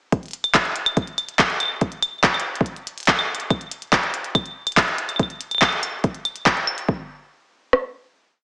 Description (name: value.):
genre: IDM.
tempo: 142 BPM.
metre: 4/4.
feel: straight.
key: none.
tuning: none.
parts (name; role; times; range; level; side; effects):
glitchy drum kit; drums; 0.1-7.8 s; kick drum, rim click; -20 LUFS; equal; small room ambience.
glitchy drum kit; drums; 0.1-6.9 s; claves, handclaps, hi-hat; -19 LUFS; equal; small room ambience, tape echo.
room: wet echo chamber reverb, RT60 1.3 s, digital ambience.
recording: heavily compressed radio sound, small speaker sound.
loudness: -19 LUFS.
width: side -26 dB against mid.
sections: 0.1-6.9 groove; 6.9-8.4 final hit.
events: none.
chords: none.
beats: | 0.12 0.55 0.97 1.39 | 1.81 2.24 2.66 3.08 | 3.50 3.93 4.35 4.77 | 5.20 5.62 6.04 6.46 | 6.88 7.31 7.73.